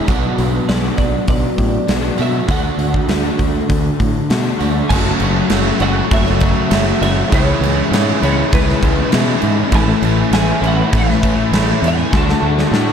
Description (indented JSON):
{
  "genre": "rock, shoegaze and dream pop",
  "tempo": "100 BPM",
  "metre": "4/4",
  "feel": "straight",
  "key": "unclear",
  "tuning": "A4 = 442 Hz",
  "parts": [
    { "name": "overdriven electric guitar", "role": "riff", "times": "0.0-12.9 s", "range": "F#2 to F#4", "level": "-23 LUFS", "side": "right 15 dB", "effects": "reverse reverb" },
    { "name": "overdriven semi-hollow guitar", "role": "riff", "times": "0.0-12.9 s", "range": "F#2 to F#4", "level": "-19 LUFS", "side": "left 8 dB", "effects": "wide subtle chorus" },
    { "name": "growling fingered electric bass", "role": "bass", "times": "0.1-12.9 s", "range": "F#1 to B2", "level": "-19 LUFS", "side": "equal", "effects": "overdrive" },
    { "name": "huge arena drum kit", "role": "drums", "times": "0.1-12.9 s", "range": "crash cymbal, hi-hat, kick drum, snare drum", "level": "-18 LUFS", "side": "equal", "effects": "none" },
    { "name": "twelve-string electric guitar", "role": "melody", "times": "0.7-12.9 s", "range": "B4 to A5", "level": "-24 LUFS", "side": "right 2 dB", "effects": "ensemble chorus, slapback echo" },
    { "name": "overdriven electric guitar", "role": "riff", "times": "4.9-12.9 s", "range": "F#2 to F#4", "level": "-23 LUFS", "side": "right 4 dB", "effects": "none" }
  ],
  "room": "small room reverb",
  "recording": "dark, warm production",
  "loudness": "-13 LUFS",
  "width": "side -8 dB against mid",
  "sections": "0.0-4.9 A section; 4.9-12.9 B section",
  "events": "drum fill 12.1-12.9",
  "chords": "0.1 Bm; 2.5 D; 4.9 F#m7; 7.3 C#m7; 9.7 A; 12.1 D"
}